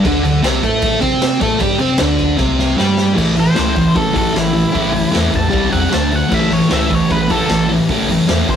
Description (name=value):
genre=garage rock duo or trio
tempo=153 BPM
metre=4/4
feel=straight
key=unclear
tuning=A4 = 440 Hz
part: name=thick fuzz guitar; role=riff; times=0.0-8.6 s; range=A2 to C5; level=-14 LUFS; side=equal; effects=distortion
part: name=soft dub sub bass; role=bass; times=0.0-8.6 s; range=A1 to C3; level=-22 LUFS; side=equal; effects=tube saturation
part: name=raw garage drum kit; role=drums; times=0.0-8.6 s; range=crash cymbal, hi-hat, kick drum, snare drum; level=-20 LUFS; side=equal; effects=none
part: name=octave-fuzz lead guitar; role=melody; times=3.4-8.6 s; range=E4 to A5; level=-20 LUFS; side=left 1 dB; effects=distortion
room=light reverb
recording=rough rehearsal-room recording, warm saturation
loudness=-12 LUFS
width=side -8 dB against mid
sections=0.0-3.2 A section; 3.2-8.6 B section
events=drum fill 2.4-3.2; lead electric guitar solo 3.2-8.6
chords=0.0 D5; 3.2 A; 5.5 C5; 5.9 D5; 6.3 A